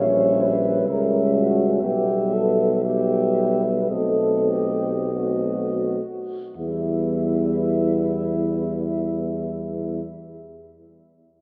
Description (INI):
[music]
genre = classical, hymn-like piece for brass band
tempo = 40-67 BPM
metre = 4/4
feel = rubato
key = E minor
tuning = A4 = 439 Hz
[part]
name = mellow flugelhorn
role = melody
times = 0.0-10.0 s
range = D#5 to E5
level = -31 LUFS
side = equal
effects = none
[part]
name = mellow French horn section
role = second line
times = 0.0-10.0 s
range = E4 to C#5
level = -27 LUFS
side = equal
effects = none
[part]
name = mellow trombone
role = accompaniment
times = 0.0-10.0 s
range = G3 to A3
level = -33 LUFS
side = equal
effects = none
[part]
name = warm euphonium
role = accompaniment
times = 0.0-10.0 s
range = B3 to C#4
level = -31 LUFS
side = equal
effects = none
[part]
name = warm tuba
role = bass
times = 0.0-10.0 s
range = A#1 to E2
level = -27 LUFS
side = equal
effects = none
[sound]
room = wet church reverb, RT60 3.5 s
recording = recorded in a church or concert hall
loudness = -22 LUFS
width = mono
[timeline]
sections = 0.0-6.6 A section; 6.6-11.4 B section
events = slowing down 0.0-6.6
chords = 0.0 A#dim7; 1.8 Em/B; 3.9 B7b9; 6.6 Em